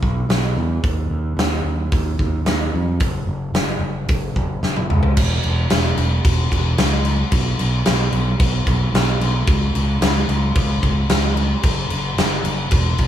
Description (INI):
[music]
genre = rock, shoegaze and dream pop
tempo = 111 BPM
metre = 4/4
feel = straight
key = unclear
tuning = A4 = 440 Hz
[part]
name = growling fingered electric bass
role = bass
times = 0.0-13.1 s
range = E1 to E#2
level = -20 LUFS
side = equal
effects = overdrive
[part]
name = huge arena drum kit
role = drums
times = 0.0-13.1 s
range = crash cymbal, hi-hat, kick drum, snare drum, toms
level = -19 LUFS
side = equal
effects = none
[sound]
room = little or no reverb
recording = small room ambience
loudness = -16 LUFS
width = side -11 dB against mid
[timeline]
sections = 0.0-5.2 A section; 5.2-13.1 A section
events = drum fill 4.6-5.2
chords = none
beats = 0.30 | 0.84 1.38 1.93 2.47 | 3.01 3.55 4.09 4.63 | 5.17 5.71 6.25 6.79 | 7.33 7.87 8.40 8.94 | 9.48 10.02 10.56 11.10 | 11.64 12.18 12.72